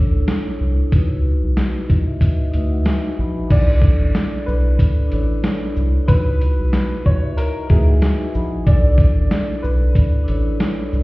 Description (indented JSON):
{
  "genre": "hip hop, boom-bap hip-hop",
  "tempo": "93 BPM",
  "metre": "4/4",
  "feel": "swing 56% on 16ths",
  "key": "B dorian",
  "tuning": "A4 = 440 Hz",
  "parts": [
    { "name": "vibraphone with soft mallets", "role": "accompaniment", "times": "0.0-11.0 s", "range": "D4 to B5", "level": "-26 LUFS", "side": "left 1 dB", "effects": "none" },
    { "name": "soft dub sub bass", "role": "bass", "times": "0.0-11.0 s", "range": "A1 to D2", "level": "-17 LUFS", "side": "equal", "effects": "none" },
    { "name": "boom bap sampler-style drum kit", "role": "drums", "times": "0.3-11.0 s", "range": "crash cymbal, hi-hat, kick drum, shaker, snare drum", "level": "-16 LUFS", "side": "equal", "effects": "none" },
    { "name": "clear upright piano", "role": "melody", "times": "3.5-11.0 s", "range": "G#4 to D5", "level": "-28 LUFS", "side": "right 1 dB", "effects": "tape echo" }
  ],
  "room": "light reverb, digital ambience",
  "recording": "heard muffled through a wall, stone room reverb, vinyl crackle, EQ",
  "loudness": "-15 LUFS",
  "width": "side -20 dB against mid",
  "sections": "0.0-3.5 A section; 3.5-11.0 B section",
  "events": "none",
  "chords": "0.0 Bm11 (rootless); 0.9 C#m11; 3.5 Bm11; 6.1 C#m11; 8.7 Bm11"
}